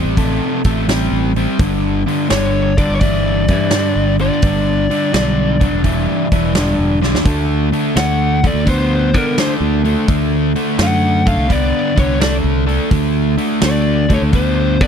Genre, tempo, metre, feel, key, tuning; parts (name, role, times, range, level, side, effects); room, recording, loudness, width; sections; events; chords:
blues rock power trio and southern rock; 85 BPM; 4/4; swing 67% on 8ths; G major; A4 = 440 Hz
overdriven electric guitar; riff; 0.0-14.9 s; G2 to B3; -17 LUFS; left 1 dB; spring reverb
modern bright fingered electric bass; bass; 0.0-14.9 s; E1 to D3; -18 LUFS; equal
big rock drum kit; drums; 0.2-14.9 s; hi-hat, kick drum, snare drum; -19 LUFS; right 1 dB
biting lead guitar; melody; 2.3-14.9 s; Bb4 to F#5; -22 LUFS; left 2 dB; overdrive, tape echo
little or no reverb; dry, close 1970s-style studio recording; -13 LUFS; side -8 dB against mid
0.0-14.9 A section
drum fill 6.9-7.3
0.0 C5; 1.6 G5; 7.3 D5